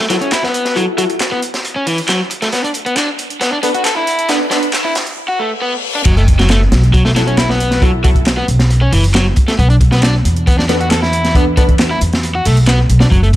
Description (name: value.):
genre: breakbeat, breaks.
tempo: 136 BPM.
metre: 4/4.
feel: straight.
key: F# minor.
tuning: A4 = 440 Hz.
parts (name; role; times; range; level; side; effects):
overdriven electric guitar; riff; 0.0-13.3 s; E3 to A4; -17 LUFS; equal; tube saturation, low-pass filter, tape echo.
riser, reverse cymbal and impact; sound effects; 2.3-7.8 s; none; -27 LUFS; left 1 dB; none.
orchestra-hit-like synth stab; stabs; 0.1-11.7 s; D4 to B4; -20 LUFS; left 1 dB; built-in reverb, tape echo.
crunchy breakbeat drum kit; drums; 0.1-13.4 s; crash cymbal, hi-hat, kick drum, snare drum; -15 LUFS; equal; high-pass filter on kick, high-pass filter on hats, high-pass filter on cymbals, high-pass filter on snare, high-pass filter on room.
punchy analog drum machine; drums; 0.1-13.4 s; handclaps, hi-hat; -23 LUFS; equal; high-pass filter on hats, high-pass filter on snare.
upright bass; bass; 6.1-13.4 s; F#1 to E2; -13 LUFS; equal; none.
room: light reverb, small room ambience.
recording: dark, warm production, high-pass filter.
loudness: -11 LUFS.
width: side -14 dB against mid.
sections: 0.0-6.1 A section; 6.1-13.4 B section.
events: build-up 0.0-6.1; drum fill 2.5-5.2; break 5.2-6.1; reverse cymbal 5.2-6.1; drop 6.1-13.4; impact 6.1-7.8.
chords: 0.0 F#m7; 2.5 Bm7; 6.1 F#m7; 9.6 Bm7.